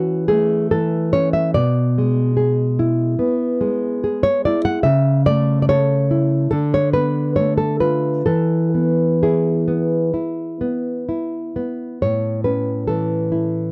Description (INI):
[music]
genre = romantic piece for solo classical guitar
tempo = 62-75 BPM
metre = 4/4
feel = rubato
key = A major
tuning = A4 = 441 Hz
[part]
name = nylon-string guitar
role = solo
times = 0.0-13.7 s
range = A2 to F#5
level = -19 LUFS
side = equal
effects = none
[sound]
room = light reverb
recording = dry, close 1970s-style studio recording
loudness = -19 LUFS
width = mono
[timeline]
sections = 0.0-13.7 A section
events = none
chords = 0.0 A; 1.6 E7/B; 4.9 A/C#; 6.5 Bm7b5/D; 8.3 E; 12.0 A